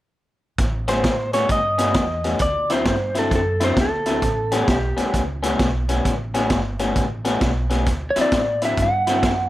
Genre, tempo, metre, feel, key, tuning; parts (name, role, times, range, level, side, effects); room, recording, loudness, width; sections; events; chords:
electric blues shuffle; 132 BPM; 4/4; swing 64% on 8ths; A mixolydian; A4 = 441 Hz
upright bass; bass; 0.6-9.5 s; G1 to A2; -26 LUFS; equal
vintage drum kit; drums; 0.6-9.4 s; hi-hat, kick drum, snare drum; -23 LUFS; equal
electric slide guitar; melody; 0.9-5.1, 8.1-9.5 s; A4 to F#5; -21 LUFS; equal; plate reverb
electric guitar through a small old amp; riff; 0.9-9.3 s; A2 to E4; -23 LUFS; left 2 dB
moderate club reverb, RT60 0.5 s; -18 LUFS; side -15 dB against mid
0.6-9.5 A section
0.6 A9; 2.4 D9; 4.2 A9; 7.9 D9